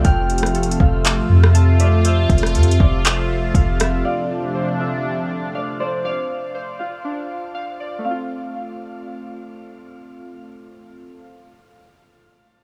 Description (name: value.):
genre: hip hop, atmospheric cloud-rap.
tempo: 120 BPM.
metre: 4/4.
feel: half-time.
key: F major.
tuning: A4 = 440 Hz.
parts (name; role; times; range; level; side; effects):
Celtic harp; melody; 0.0-9.7 s; C5 to G5; -30 LUFS; equal; tape echo.
sweeping resonant pad; sustained chords; 0.0-6.0 s; C3 to F4; -26 LUFS; equal; chorus.
warbly lo-fi synth keys; arpeggios; 0.0-11.5 s; A3 to F6; -32 LUFS; equal; chorus, tape echo.
soft 808-style bass; bass; 0.0-4.0 s; F1 to F2; -18 LUFS; equal; none.
smooth R&B drum kit; drums; 0.0-3.9 s; handclaps, hi-hat, kick drum, rim click; -19 LUFS; equal; overdrive.
wind-like tuned noise texture; texture; 0.2-2.0 s; A3 to E6; -40 LUFS; equal; none.
room: little or no reverb.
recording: small room ambience.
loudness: -18 LUFS.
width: mono.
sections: 0.0-8.0 A section; 8.0-12.0 B section.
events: none.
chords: 0.0 Fmaj7; 4.0 Dm7; 8.0 F.